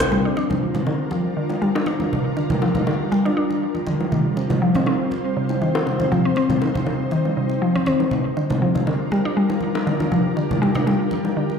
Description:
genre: afro house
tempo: 120 BPM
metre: 4/4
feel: swing 54% on 16ths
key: G minor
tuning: A4 = 443 Hz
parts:
  - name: ethereal airy pad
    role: sustained chords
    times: 0.0-11.6 s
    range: G3 to C5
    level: -24 LUFS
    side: equal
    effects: ensemble chorus, built-in reverb
  - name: bongos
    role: percussion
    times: 0.0-11.3 s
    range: none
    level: -28 LUFS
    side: left 3 dB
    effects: none
  - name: mallet-like synth pluck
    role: arpeggios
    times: 0.1-11.5 s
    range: C3 to D4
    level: -22 LUFS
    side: left 1 dB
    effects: chorus, tape echo
  - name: congas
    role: percussion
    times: 0.1-11.6 s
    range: none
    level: -26 LUFS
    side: right 2 dB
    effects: none
room: moderate plate reverb, RT60 1.2 s, studio ambience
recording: played on a big sound system in a bare room, large studio reverb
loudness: -18 LUFS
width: side -6 dB against mid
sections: 0.1-11.6 A section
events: none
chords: 0.1 Gm7; 4.1 Fsus2; 8.1 Gm7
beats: | 0.12 0.62 1.12 1.62 | 2.12 2.62 3.12 3.62 | 4.12 4.62 5.12 5.62 | 6.12 6.62 7.12 7.62 | 8.12 8.62 9.12 9.62 | 10.12 10.62 11.12

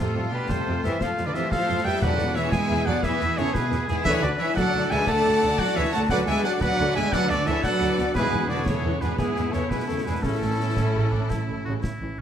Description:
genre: cinematic, heroic adventure film score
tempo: 117 BPM (dotted quarters)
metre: 12/8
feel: straight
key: unclear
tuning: A4 = 439 Hz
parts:
  - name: clear symphonic violin section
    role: melody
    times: 0.0-11.8 s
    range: E4 to F#5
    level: -32 LUFS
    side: left 4 dB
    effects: none
  - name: bright flute section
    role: second line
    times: 0.0-11.8 s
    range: G#4 to A5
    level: -35 LUFS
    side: left 2 dB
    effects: none
  - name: bright symphonic violin section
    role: second line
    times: 0.0-11.8 s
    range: B3 to D5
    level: -36 LUFS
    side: left 4 dB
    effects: none
  - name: clear oboe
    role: second line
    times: 0.0-12.2 s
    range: C#4 to B4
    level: -34 LUFS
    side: right 1 dB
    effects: none
  - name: warm symphonic viola section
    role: accompaniment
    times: 0.0-12.2 s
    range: C3 to D4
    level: -32 LUFS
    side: equal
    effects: none
  - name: mellow French horn section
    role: sustained chords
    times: 0.0-11.8 s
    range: G#3 to A4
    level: -31 LUFS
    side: left 3 dB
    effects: none
  - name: mellow trumpet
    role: stabs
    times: 0.0-11.8 s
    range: G#4 to A5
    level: -28 LUFS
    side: right 1 dB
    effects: none
  - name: rich symphonic cello section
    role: bass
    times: 0.0-11.8 s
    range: G#2 to A3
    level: -29 LUFS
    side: right 2 dB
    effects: none
  - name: rich symphonic double bass section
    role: bass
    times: 0.0-12.2 s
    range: A1 to F2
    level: -30 LUFS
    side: right 2 dB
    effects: none
  - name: concert snare drum, concert bass drum and clash cymbals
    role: drums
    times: 0.5-12.0 s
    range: none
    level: -32 LUFS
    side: equal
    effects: none
  - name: timpani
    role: percussion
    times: 2.0-2.5, 8.1-8.6 s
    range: E2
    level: -33 LUFS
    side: left 2 dB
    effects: none
room: light reverb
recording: close, detailed microphones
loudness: -21 LUFS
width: side -9 dB against mid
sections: 0.0-12.2 A section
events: none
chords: 0.0 Fadd9; 2.0 E; 4.1 D; 6.1 Bm/D; 8.2 E; 10.2 A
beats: 0.50 1.01 1.52 | 2.03 2.53 3.04 3.55 | 4.06 4.57 5.08 5.59 | 6.10 6.62 7.13 7.64 | 8.16 8.67 9.19 9.71 | 10.24 10.77 11.30 11.84

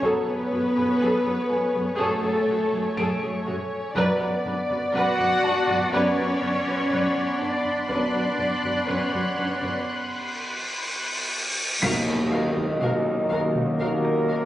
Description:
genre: cinematic, suspense film score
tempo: 61 BPM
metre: 4/4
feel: straight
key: unclear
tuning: A4 = 440 Hz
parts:
  - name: muted studio violin section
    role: melody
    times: 0.0-14.4 s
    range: C#5 to F5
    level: -32 LUFS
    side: left 1 dB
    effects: none
  - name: muted studio violin section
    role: second line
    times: 0.0-14.4 s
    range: A4 to F#5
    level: -28 LUFS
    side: left 1 dB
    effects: none
  - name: muted studio viola section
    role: accompaniment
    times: 0.0-14.4 s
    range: D4 to B4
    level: -32 LUFS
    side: right 1 dB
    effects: none
  - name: bright trombone section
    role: sustained chords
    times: 0.0-14.5 s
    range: F#2 to F#3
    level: -34 LUFS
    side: right 2 dB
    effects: none
  - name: glass harmonica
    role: sustained chords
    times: 0.0-14.5 s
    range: B3 to G#5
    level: -32 LUFS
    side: equal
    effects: none
  - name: warm French horn section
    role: sustained chords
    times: 0.0-14.5 s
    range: Bb3 to D5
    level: -29 LUFS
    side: left 1 dB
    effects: none
  - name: muted studio cello section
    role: bass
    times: 0.0-14.5 s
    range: Eb2 to F#4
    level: -27 LUFS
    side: equal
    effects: none
  - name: muted studio double bass section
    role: bass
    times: 0.0-14.5 s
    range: Eb2 to F#2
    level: -31 LUFS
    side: right 1 dB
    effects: none
  - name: solo taiko drums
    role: drums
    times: 0.0-14.5 s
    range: none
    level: -37 LUFS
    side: left 1 dB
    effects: none
  - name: sub drop, cymbal swell and impact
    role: sound effects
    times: 0.0, 9.9-14.5 s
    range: none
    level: -29 LUFS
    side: equal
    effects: none
  - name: felt-muted upright piano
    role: texture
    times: 0.0-14.5 s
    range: E#4 to D7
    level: -35 LUFS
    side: left 1 dB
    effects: none
  - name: muted studio violin section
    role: texture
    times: 4.0-11.3 s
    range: B5 to F#6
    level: -33 LUFS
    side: left 1 dB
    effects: none
room: moderate concert hall reverb, RT60 2.1 s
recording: recorded on a phone in the room, club ambience, nothing above 10.5 kHz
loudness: -22 LUFS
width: side -14 dB against mid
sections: 0.0-11.8 A section; 11.8-14.5 B section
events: break 9.9-11.8; cymbal swell 9.9-11.8; impact 11.8-14.5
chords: 0.0 F#madd9; 4.0 Bmadd9/F#; 11.8 Ebm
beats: | 0.03 1.01 1.99 2.98 | 3.96 4.95 5.93 6.91 | 7.90 8.88 9.86 10.85 | 11.83 12.81 13.80

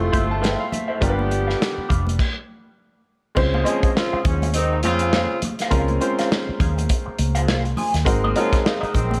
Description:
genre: lush 1970s-style soul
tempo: 102 BPM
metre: 4/4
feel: swing 58% on 16ths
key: Db major from 3.4 s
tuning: A4 = 437 Hz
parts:
  - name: clear grand piano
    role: accompaniment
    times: 0.0-9.2 s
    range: G3 to C6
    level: -27 LUFS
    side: equal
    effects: none
  - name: electric guitar through a small old amp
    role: riff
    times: 0.0-9.1 s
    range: C4 to Ab5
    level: -31 LUFS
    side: equal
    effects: wah, lush chorus
  - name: mellow horn section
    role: stabs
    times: 0.0-9.2 s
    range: Gb2 to Ab4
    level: -27 LUFS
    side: equal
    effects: none
  - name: vintage muted fingered electric bass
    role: bass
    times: 0.0-9.2 s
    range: F1 to F2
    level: -25 LUFS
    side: equal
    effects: none
  - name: warm soul drum kit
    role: drums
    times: 0.1-9.2 s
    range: crash cymbal, hi-hat, kick drum, snare drum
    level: -25 LUFS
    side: equal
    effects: none
  - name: congas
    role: percussion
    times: 0.1-9.2 s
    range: none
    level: -33 LUFS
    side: equal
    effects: none
room: little or no reverb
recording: none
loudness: -21 LUFS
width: mono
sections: 0.0-3.4 A section; 3.4-9.2 B section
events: stop 2.2-3.4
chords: 0.0 Fmaj7; 1.0 G7; 2.2 N.C.; 3.4 Dbmaj7; 8.1 Ab9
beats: 0.43 | 1.01 1.60 2.19 2.78 | 3.37 3.95 4.54 5.13 | 5.72 6.30 6.89 7.48 | 8.06 8.65

